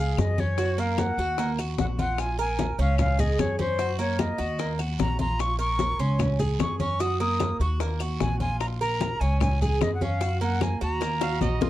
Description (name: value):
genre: latin, Cuban son and guajira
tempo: 150 BPM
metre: 4/4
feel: straight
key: unclear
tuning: A4 = 439 Hz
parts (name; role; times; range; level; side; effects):
- jazz flute; melody; 0.0-11.6 s; C5 to Eb6; -29 LUFS; left 1 dB; none
- Cuban tres; arpeggios; 0.0-11.7 s; Bb3 to Bb4; -31 LUFS; right 4 dB; none
- upright bass; bass; 0.0-11.7 s; Bb1 to Gb2; -27 LUFS; equal; none
- bongos; percussion; 0.2-11.7 s; none; -32 LUFS; left 10 dB; none
- claves; percussion; 0.2-11.4 s; none; -40 LUFS; left 15 dB; none
- congas; percussion; 0.2-11.7 s; none; -31 LUFS; left 2 dB; none
- guiro; percussion; 0.2-11.7 s; none; -45 LUFS; right 13 dB; none
- maracas; percussion; 0.2-11.7 s; none; -47 LUFS; left 23 dB; none
- clear trumpet; second line; 11.2-11.7 s; Eb5 to F5; -32 LUFS; right 8 dB; none
room: light reverb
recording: dry, close 1970s-style studio recording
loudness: -23 LUFS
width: side -14 dB against mid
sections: 0.0-11.7 A section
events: drum fill 11.2-11.7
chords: 0.0 Db5; 0.6 Gb; 1.4 Ebm; 2.2 Bbm7; 3.0 Db5; 3.8 Gb; 4.6 Ebm; 5.4 Bbm; 6.2 Db5; 7.0 Gb; 7.8 Ebm; 8.6 Bbm; 9.4 Db5; 10.2 Gb; 11.0 Ebm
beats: 0.19 | 0.59 0.99 1.39 1.79 | 2.19 2.59 2.99 3.39 | 3.79 4.19 4.59 4.99 | 5.39 5.79 6.20 6.60 | 7.00 7.40 7.80 8.20 | 8.60 9.01 9.41 9.81 | 10.21 10.61 11.01 11.41